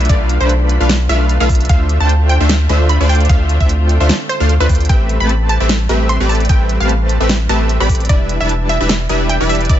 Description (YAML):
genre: future bass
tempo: 150 BPM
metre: 4/4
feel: swing 55% on 16ths, half-time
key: A minor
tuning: A4 = 440 Hz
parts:
  - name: wide unison pluck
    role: melody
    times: 0.0-9.8 s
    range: B4 to C6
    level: -21 LUFS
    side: right 1 dB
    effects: sidechain pumping, dub echo
  - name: dark studio string section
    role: sustained chords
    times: 0.0-9.8 s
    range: D3 to E5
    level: -28 LUFS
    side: equal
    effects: none
  - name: supersaw stab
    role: riff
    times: 0.0-9.8 s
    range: G3 to B5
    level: -18 LUFS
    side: equal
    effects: sidechain pumping
  - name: saturated sub bass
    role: bass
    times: 0.0-9.8 s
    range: E1 to D2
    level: -14 LUFS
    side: equal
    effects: sidechain pumping
  - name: pop drum kit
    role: drums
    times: 0.0-9.8 s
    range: hi-hat, snare drum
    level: -20 LUFS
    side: right 1 dB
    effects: none
  - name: downlifter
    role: sound effects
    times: 0.0-1.7 s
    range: none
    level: -32 LUFS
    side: equal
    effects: none
  - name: electronic kick drum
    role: drums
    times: 0.1-9.8 s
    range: none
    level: -12 LUFS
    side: equal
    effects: none
room: little or no reverb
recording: nothing above 7.9 kHz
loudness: -11 LUFS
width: side -11 dB against mid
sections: 0.0-9.8 A section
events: none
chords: 0.0 Bm7b5; 1.7 Dm9; 4.9 Am9; 8.1 Em7